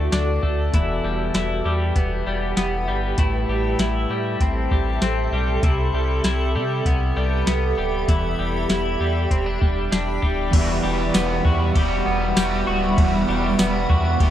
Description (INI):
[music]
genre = dream pop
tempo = 98 BPM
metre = 4/4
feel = straight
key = E minor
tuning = A4 = 439 Hz
[part]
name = granular cloud pad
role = sustained chords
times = 0.0-14.3 s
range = G3 to B5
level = -26 LUFS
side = right 2 dB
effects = built-in reverb
[part]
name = twelve-string electric guitar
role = arpeggios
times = 0.0-14.3 s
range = E2 to F#4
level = -24 LUFS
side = left 3 dB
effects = lush chorus, tape echo
[part]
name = sub bass with octave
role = bass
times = 0.0-14.3 s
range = D1 to C3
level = -24 LUFS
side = equal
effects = none
[part]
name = soft vintage rhythm box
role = drums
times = 0.1-14.3 s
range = crash cymbal, hi-hat, kick drum, ride cymbal, snare drum, tambourine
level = -20 LUFS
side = equal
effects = overdrive
[part]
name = raw garage guitar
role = accompaniment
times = 10.5-14.3 s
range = E2 to F#4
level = -25 LUFS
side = right 5 dB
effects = overdrive, harmonic tremolo, lush chorus
[sound]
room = little or no reverb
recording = dark, warm production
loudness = -18 LUFS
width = side -11 dB against mid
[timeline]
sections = 0.0-10.5 A section; 10.5-14.3 B section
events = none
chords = 0.0 D; 0.7 Em; 3.2 Am7; 5.6 Cmaj7; 8.1 Em7; 10.5 Emadd9